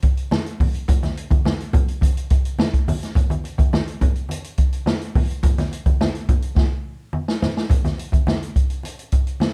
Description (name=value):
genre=funk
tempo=106 BPM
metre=4/4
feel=straight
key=none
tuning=none
part: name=swinging big-band drum kit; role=drums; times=0.0-9.5 s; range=hi-hat, kick drum, snare drum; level=-21 LUFS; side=equal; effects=none
part: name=congas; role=percussion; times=0.0-9.5 s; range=none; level=-28 LUFS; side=equal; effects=none
room=light reverb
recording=dark, warm production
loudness=-21 LUFS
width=mono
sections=0.0-7.7 A section; 7.7-9.5 B section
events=drum fill 6.6-7.7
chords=none